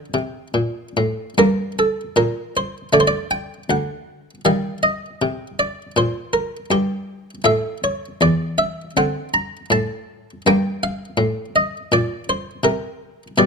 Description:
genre	classical, baroque-style suite movement for harpsichord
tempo	80 BPM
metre	4/4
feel	rubato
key	G minor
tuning	A4 = 440 Hz
part	buff-stop harpsichord	solo	0.0-13.5 s	D2 to Bb5	-17 LUFS	equal	none
room	light reverb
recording	close, detailed microphones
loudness	-18 LUFS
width	side -5 dB against mid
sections	0.0-1.4 A section; 1.4-13.5 B section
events	none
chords	0.0 Gm; 2.9 D; 4.4 Eb; 7.4 A5; 9.0 D5; 10.4 Gm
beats	0.55 | 1.37 2.15 2.92 3.68 | 4.44 5.20 5.96 6.70 | 7.45 8.20 8.95 9.70 | 10.45 11.18 11.92 12.65 | 13.38

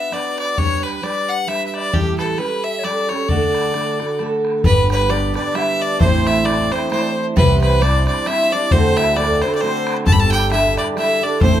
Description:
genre	celtic folk, Celtic waltz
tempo	133 BPM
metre	3/4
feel	swing 56% on 8ths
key	D major, G major from 4.7 s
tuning	A4 = 440 Hz
part	clear fiddle	melody	0.0-11.6 s	G4 to B5	-20 LUFS	left 1 dB	none
part	mellow wooden flute	second line	0.0-11.6 s	G4 to A5	-27 LUFS	left 4 dB	none
part	fingerpicked twelve-string acoustic guitar	accompaniment	0.0-11.6 s	A2 to C5	-21 LUFS	right 3 dB	none
part	bodhran	percussion	0.1-11.5 s	none	-21 LUFS	left 2 dB	none
part	cimbalom	second line	4.6-11.6 s	B3 to A4	-25 LUFS	right 2 dB	none
part	upright bass	bass	4.6-11.6 s	G1 to D2	-19 LUFS	equal	none
room	moderate studio reverb, RT60 0.5 s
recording	none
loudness	-15 LUFS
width	side -11 dB against mid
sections	0.0-4.7 A section; 4.7-11.6 B section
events	none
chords	0.0 Bm; 0.6 G; 1.9 A7; 3.3 D; 4.7 G; 6.0 Am; 7.4 C; 8.7 D; 10.1 Gsus2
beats	0.13 | 0.58 1.03 1.48 | 1.94 2.39 2.84 | 3.29 3.75 4.20 | 4.65 5.10 5.56 | 6.01 6.46 6.91 | 7.36 7.82 8.27 | 8.72 9.17 9.62 | 10.07 10.52 10.97 | 11.42

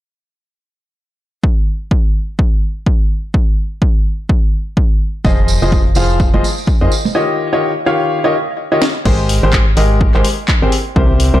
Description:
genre	piano house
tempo	126 BPM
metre	4/4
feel	swing 58% on 16ths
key	Ab major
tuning	A4 = 440 Hz
part	electronic kick drum	drums	1.4-11.1 s	none	-13 LUFS	equal	overdrive
part	clear upright piano	riff	5.2-11.4 s	C3 to F5	-16 LUFS	left 1 dB	sidechain pumping, ping-pong delay
part	organ-like FM bass	bass	5.2-11.4 s	F1 to F2	-14 LUFS	equal	sidechain pumping
part	tambourine and congas	percussion	5.2-7.1 s	none	-22 LUFS	right 5 dB	none
part	house drum kit	drums	8.8-11.3 s	crash cymbal, handclaps, hi-hat, snare drum	-19 LUFS	left 1 dB	none
room	light reverb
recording	dark, warm production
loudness	-12 LUFS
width	side -14 dB against mid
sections	1.4-9.1 A section; 9.1-11.4 B section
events	break 7.2-9.1; drum fill 8.8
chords	1.4 N.C.; 5.0 Fm7; 6.9 Eb9; 9.1 Abmaj9; 10.7 C7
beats	| 1.44 1.91 2.39 2.86 | 3.34 3.82 4.29 4.77 | 5.25 5.72 6.20 6.67 | 7.15 7.63 8.10 8.58 | 9.05 9.53 10.01 10.48 | 10.96

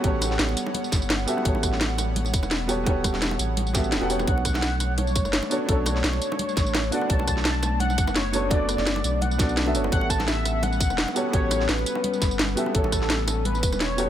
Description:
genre	liquid drum and bass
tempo	170 BPM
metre	4/4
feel	swing 54% on 16ths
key	unclear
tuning	A4 = 440 Hz
part	dark baby grand piano	accompaniment	0.0-14.1 s	B3 to F#5	-29 LUFS	right 1 dB	digital delay
part	airy breathy pad	sustained chords	0.0-14.1 s	G3 to F#5	-32 LUFS	left 3 dB	chorus
part	warm sub bass	bass	0.0-14.1 s	E1 to B1	-27 LUFS	equal	tube saturation
part	drum and bass drum kit	drums	0.0-14.1 s	hi-hat, rim click, snare drum, tambourine	-27 LUFS	equal	none
part	electronic kick drum	drums	0.0-13.7 s	none	-25 LUFS	equal	none
part	bongos and congas	percussion	0.0-14.1 s	none	-35 LUFS	right 2 dB	none
part	warm velvety synth lead	melody	4.3-14.1 s	A4 to A5	-28 LUFS	equal	chorus, dub echo
room	light reverb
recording	none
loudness	-21 LUFS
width	side -11 dB against mid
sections	0.0-14.1 A section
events	kick drops out 3.9-4.3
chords	0.0 A13; 4.3 Bm9; 9.9 A13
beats	| 0.04 0.39 0.75 1.10 | 1.45 1.80 2.16 2.51 | 2.86 3.22 3.57 3.92 | 4.28 4.63 4.98 5.33 | 5.69 6.04 6.39 6.75 | 7.10 7.45 7.80 8.16 | 8.51 8.86 9.22 9.57 | 9.92 10.28 10.63 10.98 | 11.33 11.69 12.04 12.39 | 12.75 13.10 13.45 13.80

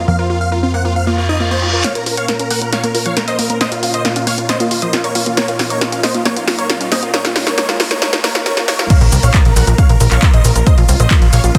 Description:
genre	uplifting trance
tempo	136 BPM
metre	4/4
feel	straight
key	Bb minor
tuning	A4 = 440 Hz
part	big supersaw lead	melody	0.0-11.6 s	F4 to Gb5	-22 LUFS	equal	phaser, sidechain pumping, tape echo
part	analog string pad	sustained chords	0.0-11.6 s	Bb2 to F4	-28 LUFS	equal	ensemble chorus, sidechain pumping
part	plucky analog bass	bass	0.0-1.8, 9.0-11.5 s	Bb1 to F2	-16 LUFS	equal	sidechain pumping
part	unison pluck	arpeggios	0.1-8.9 s	F3 to Bb4	-26 LUFS	equal	sidechain pumping
part	reverse cymbal, riser, swell and impact	sound effects	1.1-10.7 s	none	-28 LUFS	equal	none
part	analog pluck	second line	1.8-11.6 s	F4 to Gb5	-26 LUFS	equal	chorus, sidechain pumping
part	punchy analog drum machine	drums	1.8-11.6 s	crash cymbal, handclaps, hi-hat, shaker, snare drum	-20 LUFS	equal	none
part	electronic kick drum	drums	8.9-11.6 s	none	-13 LUFS	equal	none
room	moderate lush hall reverb, RT60 1.9 s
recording	dense, heavily limited modern master, high-pass filter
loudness	-14 LUFS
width	mono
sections	0.0-1.8 A section; 1.8-8.9 B section; 8.9-11.6 C section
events	reverse cymbal 1.1-1.8; build-up 1.8-8.9; drum fill 1.8-8.9; filter sweep on synth arpeggio sound 1.8-8.9; swell 8.0-8.9; drop 8.9-11.6; impact 8.9-10.7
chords	0.0 Fsus4; 1.8 Bbm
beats	| 0.08 0.52 0.96 1.40 | 1.84 2.28 2.73 3.17 | 3.61 4.05 4.49 4.93 | 5.37 5.81 6.25 6.70 | 7.14 7.58 8.02 8.46 | 8.90 9.34 9.78 10.23 | 10.67 11.11 11.55

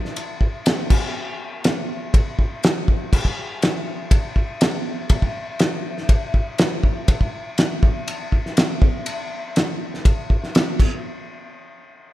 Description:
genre	rock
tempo	121 BPM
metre	4/4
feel	straight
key	none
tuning	none
part	cloth-damped thuddy drum kit	drums	0.1-10.9 s	crash cymbal, kick drum, ride cymbal, snare drum	-19 LUFS	equal	none
room	light reverb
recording	rough home demo mix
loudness	-18 LUFS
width	side -15 dB against mid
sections	0.0-11.0 A section; 11.0-12.1 B section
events	drum fill 10.8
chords	none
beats	0.16 0.66 | 1.15 1.65 2.14 2.63 | 3.13 3.62 4.12 4.61 | 5.11 5.60 6.09 6.59 | 7.08 7.58 8.07 8.57 | 9.06 9.56 10.05 10.54

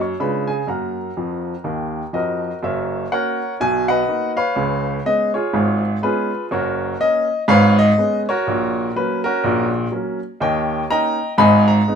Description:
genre	jazz, stride piano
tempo	123 BPM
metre	4/4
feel	swing 59% on 8ths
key	F# major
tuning	A4 = 441 Hz
part	clear baby grand piano	solo	0.0-12.0 s	F#1 to C#6	-16 LUFS	equal	none
room	moderate studio reverb, RT60 0.8 s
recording	minimal, uncompressed stereo recording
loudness	-17 LUFS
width	side -7 dB against mid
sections	0.0-2.6 A section; 2.6-12.0 B section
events	grand piano fill 1.2-2.6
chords	0.2 C#7b9; 0.7 F#; 2.6 F#7; 3.6 Bmaj7; 4.6 C#7; 6.5 F#; 7.5 C#5/G#; 8.5 F#/A#; 10.4 D#7; 11.4 G#m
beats	0.20 | 0.69 1.17 1.66 2.14 | 2.63 3.12 3.60 4.09 | 4.57 5.06 5.54 6.03 | 6.52 7.00 7.49 7.98 | 8.46 8.95 9.44 9.92 | 10.41 10.89 11.38 11.87

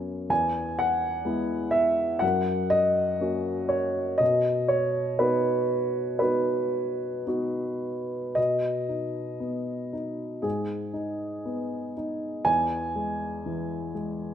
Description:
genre	classical, lyrical solo piano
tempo	55-64 BPM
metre	4/4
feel	rubato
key	B major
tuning	A4 = 440 Hz
part	dark upright piano	solo	0.0-14.3 s	E2 to G#5	-25 LUFS	equal	none
room	moderate recital hall reverb, RT60 1.7 s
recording	none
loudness	-24 LUFS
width	side -9 dB against mid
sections	0.0-8.4 A section; 8.4-14.3 B section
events	none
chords	0.3 E; 2.2 F#; 4.2 B; 10.4 G#m; 12.5 E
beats	| 0.30 1.26 2.23 3.22 | 4.21 5.20 6.22 7.29 | 8.37 9.42 10.45 11.47 | 12.48 13.47

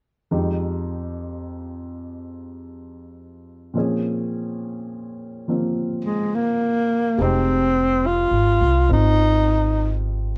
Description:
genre	jazz ballad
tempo	70 BPM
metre	4/4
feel	swing 66% on 8ths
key	F minor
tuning	A4 = 438 Hz
part	warm baby grand piano	accompaniment	0.3-10.4 s	F2 to Ab4	-29 LUFS	equal	none
part	breathy tenor saxophone	melody	6.0-9.9 s	Ab3 to F4	-21 LUFS	equal	none
part	upright bass	bass	7.2-10.4 s	F1 to C2	-22 LUFS	equal	none
room	little or no reverb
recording	close, detailed microphones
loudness	-21 LUFS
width	mono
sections	0.3-7.2 A section; 7.2-10.4 B section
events	none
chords	0.3 Fm9; 3.7 Bbm9; 7.2 Fm7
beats	| 0.32 1.18 2.04 2.89 | 3.75 4.61 5.46 6.32 | 7.18 8.04 8.90 9.76

